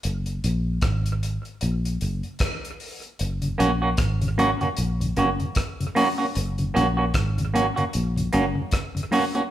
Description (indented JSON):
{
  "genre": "roots reggae",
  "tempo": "76 BPM",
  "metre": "4/4",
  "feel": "swing 58% on 16ths",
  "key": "F# major",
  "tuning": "A4 = 445 Hz",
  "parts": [
    { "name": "damped 70s drum kit", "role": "drums", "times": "0.0-9.5 s", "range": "hi-hat, kick drum, rim click", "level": "-28 LUFS", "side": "equal", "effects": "analog delay" },
    { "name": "fingered electric bass", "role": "bass", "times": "0.1-8.5 s", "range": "F#1 to A#1", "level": "-25 LUFS", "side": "equal", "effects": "none" },
    { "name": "mellow tonewheel organ", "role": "accompaniment", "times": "3.4-9.4 s", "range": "F#2 to C#4", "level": "-27 LUFS", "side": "left 1 dB", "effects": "slow rotary speaker" },
    { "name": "semi-hollow electric guitar", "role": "accompaniment", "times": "3.6-9.4 s", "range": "A#3 to F#4", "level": "-23 LUFS", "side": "right 3 dB", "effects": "none" }
  ],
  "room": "moderate large studio reverb, RT60 1.1 s",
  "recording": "band playing live in one room",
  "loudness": "-21 LUFS",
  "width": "side -12 dB against mid",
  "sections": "0.0-9.5 A section",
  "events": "none",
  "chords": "0.0 F#"
}